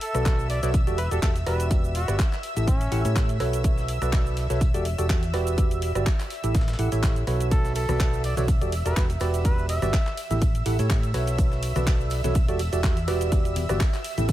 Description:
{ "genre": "piano house", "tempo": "124 BPM", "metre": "4/4", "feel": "swing 55% on 16ths", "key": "B minor", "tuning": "A4 = 440 Hz", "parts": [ { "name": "mellow trumpet", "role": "melody", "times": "0.0-3.2, 7.5-10.2 s", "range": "C#4 to E5", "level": "-33 LUFS", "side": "equal", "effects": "digital delay" }, { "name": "analog string pad", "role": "sustained chords", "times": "0.0-14.3 s", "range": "E5 to E6", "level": "-34 LUFS", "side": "equal", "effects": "ensemble chorus, sidechain pumping" }, { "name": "dusty soul sampler-style drum kit", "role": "drums", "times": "0.0-14.3 s", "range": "hi-hat, snare drum, tambourine", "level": "-44 LUFS", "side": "left 1 dB", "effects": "none" }, { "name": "house drum kit", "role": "drums", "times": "0.0-14.3 s", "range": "handclaps, hi-hat, ride cymbal, rim click, shaker", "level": "-35 LUFS", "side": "equal", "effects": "none" }, { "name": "percussive organ stab", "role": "riff", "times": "0.1-14.3 s", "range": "E4 to F#5", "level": "-30 LUFS", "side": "right 2 dB", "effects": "chorus, sidechain pumping" }, { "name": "hollow-body short-scale fingered electric bass", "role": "bass", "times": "0.1-14.3 s", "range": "E1 to A2", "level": "-26 LUFS", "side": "equal", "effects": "sidechain pumping" }, { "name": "electronic kick drum", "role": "drums", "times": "0.3-14.3 s", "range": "none", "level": "-22 LUFS", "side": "equal", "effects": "none" }, { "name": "tambourine and congas", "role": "percussion", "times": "7.5-14.3 s", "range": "none", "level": "-35 LUFS", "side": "left 4 dB", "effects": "none" } ], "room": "little or no reverb", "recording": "none", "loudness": "-21 LUFS", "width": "side -14 dB against mid", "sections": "0.0-14.3 A section", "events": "none", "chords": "0.0 Bm7; 0.7 Em11; 1.7 Gmaj7; 2.4 A7; 3.6 Bm7; 4.6 Em11; 5.6 Gmaj7; 6.3 A7; 7.5 Bm7; 8.5 Em11; 9.4 Gmaj7; 10.2 A7; 11.4 Bm7; 12.4 Em11; 13.3 Gmaj7" }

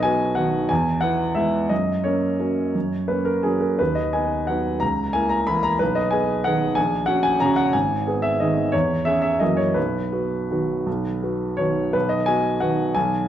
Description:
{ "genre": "classical, piano waltz", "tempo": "159-196 BPM", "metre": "3/4", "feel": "rubato", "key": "B major", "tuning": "A4 = 442 Hz", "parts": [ { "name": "clear baby grand piano", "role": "solo", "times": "0.0-13.3 s", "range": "G#1 to B5", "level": "-19 LUFS", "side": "equal", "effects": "none" } ], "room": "moderate recital hall reverb, RT60 1.6 s", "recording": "dark, warm production", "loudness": "-19 LUFS", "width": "side -10 dB against mid", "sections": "0.0-11.9 A section; 11.9-13.3 A section", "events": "none", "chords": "0.0 B; 0.7 E; 1.7 F#; 3.8 B/D#; 4.8 A#dim/C#; 5.8 G#m/B; 6.8 F#/A#; 7.7 G#m; 8.7 C#m/E; 9.4 F#7; 9.8 B" }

